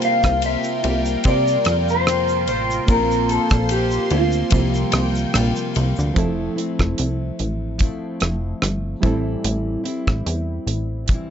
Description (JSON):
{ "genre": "indie pop, bedroom pop", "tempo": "73 BPM", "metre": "4/4", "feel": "swing 55% on 16ths", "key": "F major", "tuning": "A4 = 438 Hz", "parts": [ { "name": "electric guitar through a small old amp", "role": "melody", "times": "0.0-5.7 s", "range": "F4 to F5", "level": "-21 LUFS", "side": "equal", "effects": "wide subtle chorus, digital delay" }, { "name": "fingerpicked plugged-in steel-string acoustic guitar", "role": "accompaniment", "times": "0.0-11.3 s", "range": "A2 to F4", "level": "-26 LUFS", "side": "left 3 dB", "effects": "lush chorus, warbly pitch drift, plate reverb" }, { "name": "reed electric piano", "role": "accompaniment", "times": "0.0-11.3 s", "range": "F3 to C5", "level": "-29 LUFS", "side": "right 7 dB", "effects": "cassette tape, plate reverb" }, { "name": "phased analog pad", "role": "sustained chords", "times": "0.0-6.2 s", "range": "Bb3 to C6", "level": "-29 LUFS", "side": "equal", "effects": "phaser, chorus" }, { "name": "damped 70s drum kit", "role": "drums", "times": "0.0-11.3 s", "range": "hi-hat, kick drum, ride cymbal, rim click, shaker", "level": "-23 LUFS", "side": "equal", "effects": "none" }, { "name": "egg shaker", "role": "percussion", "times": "0.0-6.1 s", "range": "none", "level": "-43 LUFS", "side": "left 7 dB", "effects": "none" }, { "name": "plucky analog bass", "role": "bass", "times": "0.2-11.2 s", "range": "F1 to C3", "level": "-22 LUFS", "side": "equal", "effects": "none" } ], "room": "light reverb", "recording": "nothing above 7.7 kHz", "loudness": "-18 LUFS", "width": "side -8 dB against mid", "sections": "0.0-6.2 A section; 6.2-11.3 B section", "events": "none", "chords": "0.0 C7sus4; 2.9 Bbsus2; 4.5 C7sus4; 6.2 Fmaj7; 9.0 Am7" }